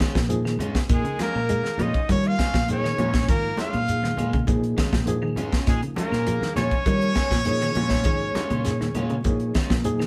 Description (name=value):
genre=afrobeat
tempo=100 BPM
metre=4/4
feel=straight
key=Bb minor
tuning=A4 = 440 Hz
part: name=reed electric piano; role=accompaniment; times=0.0-10.1 s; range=F3 to Ab5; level=-34 LUFS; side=equal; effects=fast tremolo
part: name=semi-hollow electric guitar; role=arpeggios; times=0.0-10.1 s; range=Db3 to Ab3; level=-34 LUFS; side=equal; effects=none
part: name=electric guitar at the edge of break-up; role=stabs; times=0.0-9.7 s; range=Ab3 to F4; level=-36 LUFS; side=equal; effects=phaser
part: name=tight funk drum kit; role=drums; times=0.0-10.1 s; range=hi-hat, kick drum, snare drum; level=-27 LUFS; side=equal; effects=none
part: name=shekere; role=percussion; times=0.0-10.0 s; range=none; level=-36 LUFS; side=equal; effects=none
part: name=fingered electric bass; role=bass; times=0.2-10.1 s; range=Ab2 to G3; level=-28 LUFS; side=equal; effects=none
part: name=congas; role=percussion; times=0.3-10.0 s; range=none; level=-36 LUFS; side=equal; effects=none
part: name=claves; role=percussion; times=0.5-10.1 s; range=none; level=-48 LUFS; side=equal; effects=none
part: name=bright trumpet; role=melody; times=0.9-9.8 s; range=Ab4 to F5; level=-30 LUFS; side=equal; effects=none
part: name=raspy tenor saxophone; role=second line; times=0.9-9.8 s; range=Ab3 to F4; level=-37 LUFS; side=equal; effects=none
room=moderate small room reverb, RT60 0.5 s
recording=band playing live in one room, vinyl crackle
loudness=-23 LUFS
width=mono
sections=0.0-10.1 A section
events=reed electric piano fill 4.8-5.7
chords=0.0 Bbm7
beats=0.30 | 0.90 1.50 2.09 2.69 | 3.29 3.88 4.48 5.08 | 5.67 6.27 6.87 7.46 | 8.06 8.66 9.26 9.85